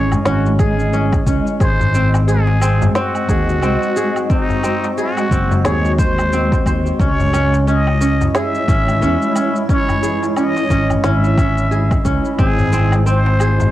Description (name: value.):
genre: organic downtempo.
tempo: 89 BPM.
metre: 4/4.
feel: swing 59% on 16ths.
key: C# harmonic minor.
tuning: A4 = 440 Hz.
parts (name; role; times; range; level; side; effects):
trumpet with plunger mute; melody; 0.0-13.7 s; D#4 to E5; -22 LUFS; equal; cassette tape, tape echo.
granular cloud pad; sustained chords; 0.0-13.7 s; G#3 to D#5; -22 LUFS; equal; built-in reverb, sidechain pumping, cassette tape.
kora; arpeggios; 0.0-13.7 s; B#3 to B#4; -21 LUFS; right 1 dB; cassette tape, tape echo.
sustaining fretless electric bass; bass; 0.0-13.7 s; F#1 to E2; -16 LUFS; equal; sidechain pumping.
electronic woodblock, shaker and snare drum; drums; 0.1-13.7 s; none; -24 LUFS; equal; cassette tape.
darbuka; percussion; 0.1-13.7 s; none; -24 LUFS; left 3 dB; none.
electronic kick drum; drums; 0.6-12.5 s; none; -18 LUFS; equal; overdrive, cassette tape.
room: light reverb.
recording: home recording on cassette.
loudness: -13 LUFS.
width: side -14 dB against mid.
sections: 0.0-13.7 A section.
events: none.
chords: 0.0 C#m; 1.6 G#7; 7.0 C#madd9; 12.4 G#7.